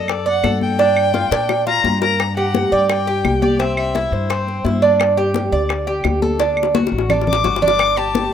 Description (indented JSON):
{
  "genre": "latin, Cuban son and guajira",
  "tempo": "171 BPM",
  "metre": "4/4",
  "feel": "straight",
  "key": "unclear",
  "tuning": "A4 = 440 Hz",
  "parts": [
    { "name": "warm violin", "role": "melody", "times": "0.0-4.8, 7.3-8.3 s", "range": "C5 to D6", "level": "-21 LUFS", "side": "left 6 dB", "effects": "tape echo" },
    { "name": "Cuban tres", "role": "arpeggios", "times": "0.0-8.3 s", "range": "C4 to D5", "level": "-18 LUFS", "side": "right 3 dB", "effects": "none" },
    { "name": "upright bass", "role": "bass", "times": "0.0-8.3 s", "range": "G1 to Bb2", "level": "-23 LUFS", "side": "left 1 dB", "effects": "none" },
    { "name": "bongos", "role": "percussion", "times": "0.1-8.3 s", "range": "none", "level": "-25 LUFS", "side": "left 12 dB", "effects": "none" },
    { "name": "claves", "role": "percussion", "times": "0.1-8.0 s", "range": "none", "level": "-26 LUFS", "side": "right 2 dB", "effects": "none" },
    { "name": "congas", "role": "percussion", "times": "0.1-8.3 s", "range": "none", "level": "-24 LUFS", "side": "left 5 dB", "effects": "none" }
  ],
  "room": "light reverb, small room ambience",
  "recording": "rough home demo mix",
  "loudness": "-15 LUFS",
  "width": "side -9 dB against mid",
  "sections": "0.0-2.2 A section; 2.2-8.3 B section",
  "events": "drum fill 0.8-2.2, 6.4-7.8",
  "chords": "0.0 D; 0.8 Gm7; 2.2 G5; 3.6 C; 5.0 G5; 6.4 D; 7.8 G5",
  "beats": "0.08 0.43 | 0.79 1.14 1.49 1.84 | 2.19 2.54 2.89 3.24 | 3.60 3.94 4.30 4.65 | 5.00 5.35 5.70 6.05 | 6.40 6.75 7.10 7.45 | 7.80 8.15"
}